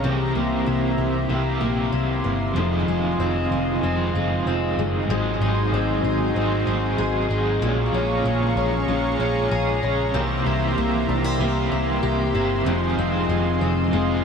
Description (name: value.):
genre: dream pop.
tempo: 95 BPM.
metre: 4/4.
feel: straight.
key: unclear.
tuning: A4 = 439 Hz.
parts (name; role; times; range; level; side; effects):
overdriven electric guitar; accompaniment; 0.0-14.2 s; F2 to Ab4; -26 LUFS; right 4 dB; tremolo, lush chorus.
warm analog pad; sustained chords; 0.0-14.2 s; F4 to Db6; -27 LUFS; right 1 dB; chorus.
fingerpicked twelve-string acoustic guitar; arpeggios; 0.0-14.2 s; F2 to Ab4; -24 LUFS; left 5 dB; wide subtle chorus, digital delay.
vintage muted picked electric bass; bass; 0.0-14.2 s; F1 to C2; -26 LUFS; equal; none.
room: moderate plate reverb, RT60 3.1 s.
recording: none.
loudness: -20 LUFS.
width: side -6 dB against mid.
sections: 0.0-5.1 A section; 5.1-14.2 B section.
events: none.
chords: 0.0 C7; 2.6 Fm7; 5.1 Ab7; 7.6 Bbm7; 10.1 C7; 12.7 Fm7.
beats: | 0.04 0.67 1.30 1.93 | 2.56 3.19 3.83 4.46 | 5.09 5.72 6.35 6.98 | 7.62 8.25 8.88 9.51 | 10.14 10.77 11.40 12.04 | 12.67 13.30 13.93.